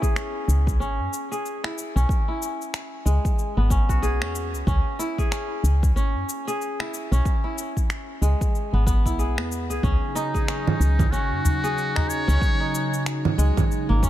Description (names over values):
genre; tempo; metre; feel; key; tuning
organic downtempo; 93 BPM; 4/4; swing 59% on 16ths; C# minor; A4 = 440 Hz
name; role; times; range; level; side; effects
kora; arpeggios; 0.0-14.1 s; G#3 to G#4; -28 LUFS; equal; low-pass filter, ping-pong delay, shimmer reverb
electronic cabasa, finger snaps and congas; drums; 0.0-14.1 s; none; -29 LUFS; right 2 dB; studio reverb
electronic kick drum; drums; 0.0-14.1 s; none; -23 LUFS; equal; studio reverb
woody FM bass; bass; 0.5-14.1 s; G#1 to F#2; -21 LUFS; equal; none
warm analog pad; sustained chords; 9.8-14.1 s; C#3 to D#4; -29 LUFS; right 2 dB; chorus, sidechain pumping
trumpet with metal mute; melody; 10.2-13.1 s; D#4 to C#5; -29 LUFS; equal; digital delay, shimmer reverb
udu; percussion; 11.0-12.1 s; none; -24 LUFS; left 1 dB; none
room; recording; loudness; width
small room ambience; none; -21 LUFS; side -13 dB against mid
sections
0.0-14.1 A section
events
none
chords
0.0 C#m7; 9.8 D#m7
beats
0.16 0.80 1.45 | 2.09 2.74 3.38 4.03 | 4.67 5.32 5.96 6.61 | 7.25 7.90 8.54 9.19 | 9.84 10.48 11.12 11.77 | 12.41 13.06 13.71